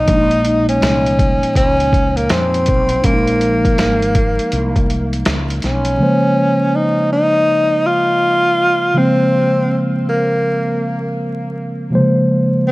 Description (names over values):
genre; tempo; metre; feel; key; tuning
hip hop, jazz-hop; 81 BPM; 4/4; swing 62% on 16ths; Bb minor; A4 = 440 Hz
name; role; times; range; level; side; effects
breathy tenor saxophone; melody; 0.0-12.7 s; Bb3 to F4; -16 LUFS; equal; tape echo
mellow fretless electric bass; bass; 0.0-6.0 s; Ab1 to F2; -20 LUFS; equal; analog chorus
mellow tine electric piano; accompaniment; 0.1-12.7 s; Bb2 to C5; -18 LUFS; equal; none
lo-fi sampler-style drum kit; drums; 0.1-6.0 s; hi-hat, kick drum, snare drum; -18 LUFS; equal; none
room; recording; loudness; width
light reverb; vinyl crackle; -13 LUFS; side -20 dB against mid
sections
0.0-6.0 A section; 6.0-12.7 B section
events
none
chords
0.0 Bbm9